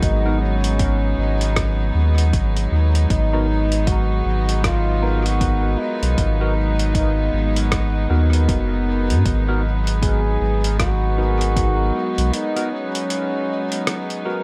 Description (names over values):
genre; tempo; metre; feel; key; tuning
ambient dub; 78 BPM; 4/4; swing 60% on 16ths; G# minor; A4 = 440 Hz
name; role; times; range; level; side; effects
warm trombone; melody; 0.0-14.2 s; C#4 to G#4; -28 LUFS; equal; dub echo
rich chamber string section; sustained chords; 0.0-14.4 s; F#3 to D#4; -30 LUFS; equal; none
overdriven tine electric piano; stabs; 0.0-14.4 s; B3 to A#4; -30 LUFS; equal; phaser, dub echo
warm sub bass; bass; 0.0-12.3 s; F#1 to G#2; -21 LUFS; equal; tube saturation
electronic kick drum; drums; 0.0-11.7 s; none; -24 LUFS; equal; none
lo-fi sampler-style drum kit; drums; 0.0-14.2 s; hi-hat, rim click; -29 LUFS; equal; overdrive, dub echo
drifting glass-harmonics texture; texture; 4.1-14.4 s; B3 to B4; -36 LUFS; equal; chorus, built-in reverb
room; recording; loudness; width
light reverb; none; -19 LUFS; mono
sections
0.0-14.4 A section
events
break 12.3-14.4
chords
0.0 G#m7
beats
| 0.03 0.80 1.56 2.33 | 3.10 3.87 4.64 5.41 | 6.18 6.95 7.72 8.49 | 9.26 10.03 10.79 11.56 | 12.33 13.10 13.87